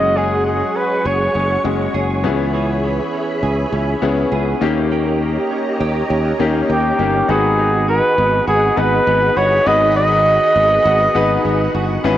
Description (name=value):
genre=pop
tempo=101 BPM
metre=4/4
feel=straight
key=G# minor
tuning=A4 = 440 Hz
part: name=clear flugelhorn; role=melody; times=0.0-1.6, 6.7-11.7 s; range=G4 to D#5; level=-16 LUFS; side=equal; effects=analog delay
part: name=clear baby grand piano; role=accompaniment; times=0.0-12.2 s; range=G#3 to B4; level=-22 LUFS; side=left 6 dB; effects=cassette tape
part: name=soft string machine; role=sustained chords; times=0.0-12.2 s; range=B3 to C#6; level=-24 LUFS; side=equal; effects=ensemble chorus, cassette tape
part: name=direct-recorded clean electric guitar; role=riff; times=0.0-12.2 s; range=D#3 to G#4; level=-24 LUFS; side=right 6 dB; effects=ensemble chorus, cassette tape, analog delay
part: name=sustaining fretless electric bass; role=bass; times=0.0-12.2 s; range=F#1 to D#2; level=-20 LUFS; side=equal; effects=none
room=moderate lush hall reverb, RT60 3.4 s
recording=home recording on cassette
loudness=-14 LUFS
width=side -12 dB against mid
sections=0.0-7.3 A section; 7.3-12.2 B section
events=none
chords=0.0 F#sus2; 2.2 C#m7; 4.6 D#7; 7.3 G#m7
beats=| 0.16 0.76 1.35 1.94 | 2.54 3.13 3.73 4.32 | 4.92 5.51 6.10 6.70 | 7.29 7.88 8.48 9.07 | 9.67 10.26 10.86 11.45 | 12.04